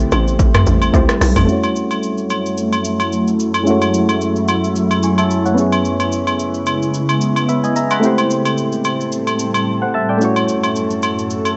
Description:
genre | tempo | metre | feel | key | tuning
amapiano | 110 BPM | 4/4 | swing 55% on 16ths | unclear | A4 = 440 Hz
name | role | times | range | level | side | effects
soft electric-piano-like synth keys | accompaniment | 0.0-11.6 s | G#3 to C#6 | -20 LUFS | equal | chorus, low-pass filter
ethereal airy pad | sustained chords | 0.0-11.6 s | F#2 to A4 | -22 LUFS | equal | ensemble chorus, built-in reverb, phaser, low-pass filter
hollow log drum bass | bass | 0.0-1.5 s | A1 to C#2 | -18 LUFS | equal | none
deep house drum kit | drums | 0.1-11.6 s | hi-hat, kick drum, rim click, shaker, toms | -22 LUFS | equal | none
agogo bells and woodblock | percussion | 0.1-11.6 s | none | -24 LUFS | equal | none
room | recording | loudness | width
light reverb | nothing above 7.9 kHz | -16 LUFS | mono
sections
0.0-1.5 A section; 1.5-11.6 B section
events
drop 0.0-1.5; filter sweep 1.5-11.6; silent gap 9.7-10.2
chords
0.0 Am7; 1.5 F#m7; 5.6 C#m7; 8.0 Am7; 10.2 F#m7

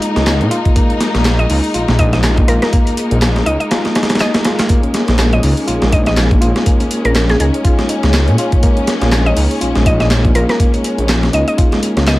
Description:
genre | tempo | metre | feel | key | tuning
breakbeat, breaks | 122 BPM | 4/4 | swing 57% on 16ths | Bb minor | A4 = 440 Hz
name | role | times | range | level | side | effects
warm symphonic string section | sustained chords | 0.0-12.2 s | Ab3 to Eb4 | -20 LUFS | left 1 dB | vintage 12-bit sampler grit, sidechain pumping
reed electric piano | riff | 0.0-12.2 s | Ab3 to F4 | -19 LUFS | equal | fast tremolo, overdrive, tape echo
breakbeat sampler-style drum kit | drums | 0.0-12.2 s | hi-hat, kick drum, snare drum | -15 LUFS | equal | none
punchy analog drum machine | drums | 0.0-12.2 s | handclaps, hi-hat | -26 LUFS | equal | none
detuned saw bass | bass | 0.2-12.2 s | Bb1 to Bb2 | -14 LUFS | equal | none
mallet-like synth pluck | melody | 1.4-12.2 s | Ab4 to Eb5 | -21 LUFS | equal | chorus, telephone sound, tape echo
room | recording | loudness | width
digital ambience | vinyl crackle | -11 LUFS | side -18 dB against mid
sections
0.0-12.2 A section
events
kick drops out 3.7-4.7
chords
0.0 Bbm7

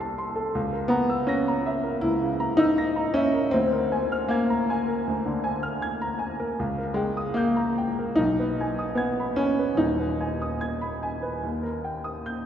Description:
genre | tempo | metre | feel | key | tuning
classical, romantic character piece for solo piano | 70-83 BPM | 4/4 | rubato | unclear | A4 = 440 Hz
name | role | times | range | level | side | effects
warm grand piano | solo | 0.0-12.5 s | D#1 to C7 | -23 LUFS | equal | none
room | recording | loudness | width
wet church reverb, RT60 3.9 s | recorded in a church or concert hall | -23 LUFS | side -9 dB against mid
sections
0.0-12.5 A section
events
none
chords
0.0 Am/C; 0.6 A#dim/C#; 3.5 A#7/D; 6.6 D#7/C#; 8.2 G#m/B; 9.8 G#m/D#; 11.4 D#

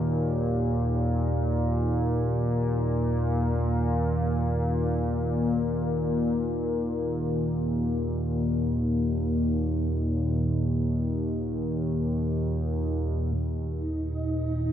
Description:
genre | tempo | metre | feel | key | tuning
dark ambient drone | free time | none | none | unclear | A4 = 445 Hz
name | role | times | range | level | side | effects
analog drone | drone | 0.0-14.7 s | Eb2 to Bb2 | -24 LUFS | equal | chorus
granular cloud pad | sustained chords | 13.8-14.7 s | Eb4 | -31 LUFS | right 2 dB | built-in reverb, shimmer reverb
room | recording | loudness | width
wet huge ambient reverb, RT60 6.9 s | dark, warm production | -24 LUFS | side -10 dB against mid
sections
0.0-13.4 A section; 13.4-14.7 B section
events
filter sweep on synth drone 13.4-14.7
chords
0.0 Eb5

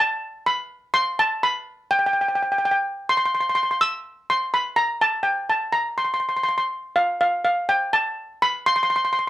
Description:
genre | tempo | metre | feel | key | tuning
calypso | 124 BPM | 4/4 | straight | C major | A4 = 442 Hz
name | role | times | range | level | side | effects
steel pan | solo | 0.0-9.3 s | F5 to E6 | -19 LUFS | equal | none
room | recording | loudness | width
moderate studio reverb, RT60 0.5 s | none | -20 LUFS | side -15 dB against mid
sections
0.0-9.3 A section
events
none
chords
none

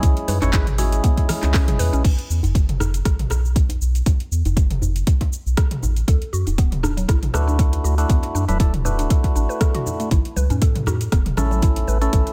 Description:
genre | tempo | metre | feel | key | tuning
afro house | 119 BPM | 4/4 | swing 55% on 16ths | B dorian | A4 = 440 Hz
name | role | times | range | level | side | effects
dark analog pad | sustained chords | 0.4-2.0 s | none | barely audible | none | none
mallet-like synth pluck | arpeggios | 0.0-2.0, 6.1-12.3 s | F#3 to B4 | -32 LUFS | equal | chorus, sidechain pumping, tape echo
percussive tonewheel organ | stabs | 0.0-2.0, 7.3-12.3 s | G#3 to C#5 | -29 LUFS | equal | overdrive, sidechain pumping, tape echo
round analog bass | bass | 0.0-12.2 s | D1 to A2 | -24 LUFS | equal | sidechain pumping
deep house drum kit | drums | 0.0-12.3 s | crash cymbal, handclaps, hi-hat, rim click, shaker, toms | -30 LUFS | equal | overdrive
electronic kick drum | drums | 0.0-12.2 s | none | -20 LUFS | equal | overdrive
congas | percussion | 0.0-1.8, 10.1-12.2 s | none | -33 LUFS | equal | none
djembe | percussion | 0.0-12.2 s | none | -31 LUFS | equal | none
room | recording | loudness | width
digital ambience | none | -20 LUFS | mono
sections
0.0-2.0 A section; 2.0-12.3 B section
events
drop 0.0-2.0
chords
0.0 C#m; 2.0 B5; 6.1 Dadd9; 10.1 A

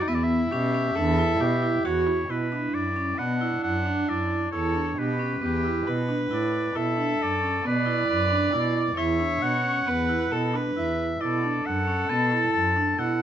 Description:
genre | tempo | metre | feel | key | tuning
contemporary instrumental, chamber music in an uneven meter | 135 BPM | 5/4 | straight | E dorian | A4 = 441 Hz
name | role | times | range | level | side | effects
clear oboe | melody | 0.0-13.2 s | B4 to A5 | -28 LUFS | left 1 dB | none
warm viola | second line | 0.0-13.2 s | D4 to D5 | -29 LUFS | left 1 dB | none
vibraphone with hard mallets | arpeggios | 0.1-13.2 s | B3 to F#4 | -28 LUFS | right 2 dB | none
muted cello | bass | 0.1-13.2 s | E2 to B2 | -29 LUFS | right 2 dB | none
room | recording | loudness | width
moderate studio reverb, RT60 0.7 s | nothing above 8.0 kHz | -22 LUFS | side -10 dB against mid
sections
0.0-2.3 A section; 2.3-13.2 B section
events
none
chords
0.1 Em; 2.3 Bm; 4.5 Em7; 6.8 Bm7; 9.0 E5; 11.2 Bm7

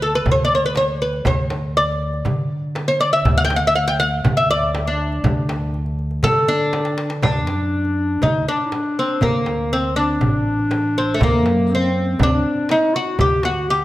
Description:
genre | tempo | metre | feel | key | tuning
Arabic maqam ensemble | 121 BPM | 4/4 | straight | D maqam rast, D maqam hijaz from 7.2 s | A4 = 440 Hz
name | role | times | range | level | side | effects
oud | melody | 0.0-13.8 s | A3 to G5 | -19 LUFS | equal | none
upright bass | bass | 0.0-13.8 s | A1 to D3 | -23 LUFS | equal | none
darbuka | percussion | 0.1-13.8 s | none | -26 LUFS | left 1 dB | none
frame drum | percussion | 0.3-13.6 s | none | -24 LUFS | right 2 dB | none
warm clarinet | second line | 7.2-13.8 s | Bb3 to G4 | -22 LUFS | left 2 dB | none
room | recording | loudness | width
moderate recital hall reverb, RT60 1.5 s | none | -16 LUFS | side -15 dB against mid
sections
0.0-7.2 A section; 7.2-13.8 B section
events
drum fill 6.7-7.2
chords
none

